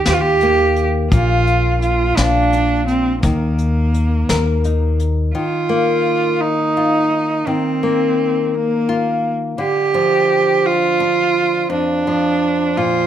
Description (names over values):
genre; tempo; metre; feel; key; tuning
folk; 57 BPM (dotted quarters); 6/8; straight; unclear; A4 = 440 Hz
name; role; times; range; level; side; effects
warm cello; melody; 0.0-13.1 s; Bb3 to G4; -17 LUFS; right 4 dB; plate reverb
nylon-string guitar; accompaniment; 0.0-13.1 s; F2 to Bb4; -20 LUFS; left 4 dB; none
upright bass; bass; 0.1-5.3 s; Bb1 to Eb2; -18 LUFS; left 1 dB; none
vintage brush drum kit; drums; 0.1-5.2 s; hi-hat, kick drum, snare drum; -21 LUFS; left 1 dB; none
room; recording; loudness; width
moderate large studio reverb, RT60 0.8 s; none; -14 LUFS; side -10 dB against mid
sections
0.0-5.4 A section; 5.4-13.1 B section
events
none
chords
0.0 Ebadd9; 1.1 Bb; 3.2 Eb5; 5.4 Ebsus2; 9.6 Dmadd11; 11.7 F5